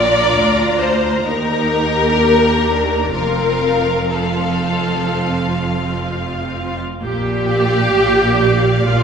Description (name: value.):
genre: classical, slow romantic movement for string orchestra.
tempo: 60-71 BPM.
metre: 4/4.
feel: rubato.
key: Bb major.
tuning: A4 = 440 Hz.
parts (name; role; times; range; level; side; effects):
rich symphonic violin section; melody; 0.0-9.0 s; F5 to Bb5; -25 LUFS; left 4 dB; none.
rich studio violin section; second line; 0.0-9.0 s; A4 to D5; -18 LUFS; left 2 dB; none.
clear symphonic viola section; accompaniment; 0.0-9.0 s; C4 to G4; -19 LUFS; right 1 dB; none.
rich symphonic cello section; bass; 0.0-9.0 s; D2 to Bb2; -21 LUFS; right 2 dB; none.
rich symphonic double bass section; bass; 0.0-9.0 s; F1 to Eb2; -23 LUFS; right 3 dB; none.
room: wet concert hall reverb, RT60 1.9 s.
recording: recorded in a church or concert hall, nothing above 10.3 kHz.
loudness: -14 LUFS.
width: side -6 dB against mid.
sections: 0.0-7.0 A section; 7.0-9.0 B section.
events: none.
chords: 0.0 Bb; 1.2 Eb; 3.1 F; 7.0 Bb.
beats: 0.37 1.24 2.16 | 3.14 4.13 5.12 6.09 | 7.03 7.94 8.87.